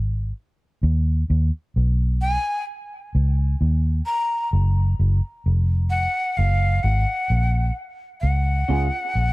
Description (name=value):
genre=dub reggae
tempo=65 BPM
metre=4/4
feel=straight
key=unclear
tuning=A4 = 440 Hz
part: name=vintage muted fingered electric bass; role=bass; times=0.0-9.3 s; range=F1 to D#2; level=-18 LUFS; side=equal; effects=none
part: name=breathy jazz flute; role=melody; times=2.2-9.3 s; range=F5 to A#5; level=-25 LUFS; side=left 1 dB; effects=dub echo
part: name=electric guitar through a small old amp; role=accompaniment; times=8.7-8.9 s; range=Db4 to Ab4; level=-28 LUFS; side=right 5 dB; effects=analog chorus, dub echo
room=studio ambience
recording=dark, warm production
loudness=-19 LUFS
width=side -21 dB against mid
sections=0.0-8.2 A section; 8.2-9.3 B section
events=break 0.0-8.2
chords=0.0 N.C.; 0.8 Badd9; 4.5 Gb; 8.2 Db